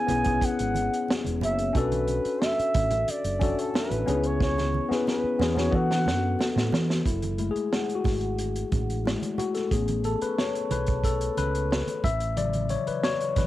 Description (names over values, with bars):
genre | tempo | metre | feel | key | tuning
lush 1970s-style soul | 90 BPM | 4/4 | straight | F# minor | A4 = 441 Hz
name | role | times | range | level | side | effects
breathy flugelhorn | melody | 0.0-6.7 s | A4 to G#5 | -28 LUFS | right 1 dB | cassette tape
tine electric piano | accompaniment | 0.0-13.5 s | C#3 to E5 | -28 LUFS | left 5 dB | cassette tape
fingered electric bass | bass | 0.1-13.5 s | E1 to E3 | -29 LUFS | right 1 dB | none
vintage drum kit | drums | 0.1-13.5 s | hi-hat, kick drum, snare drum | -29 LUFS | right 1 dB | cassette tape
congas | percussion | 0.1-13.5 s | none | -37 LUFS | right 8 dB | none
vibraphone with medium hard mallets | texture | 1.4-12.0 s | A4 to C#6 | -41 LUFS | right 9 dB | stereo widening, cassette tape
room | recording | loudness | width
light reverb, small room ambience | home recording on cassette | -24 LUFS | side -14 dB against mid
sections
0.0-7.1 A section; 7.1-13.5 B section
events
drum fill 4.4-7.1; tine electric piano solo 7.1-13.5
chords
0.0 C#m7; 1.7 Bm7; 4.1 C#m7; 5.7 E9sus4; 7.1 F#m7; 9.7 A; 12.0 A69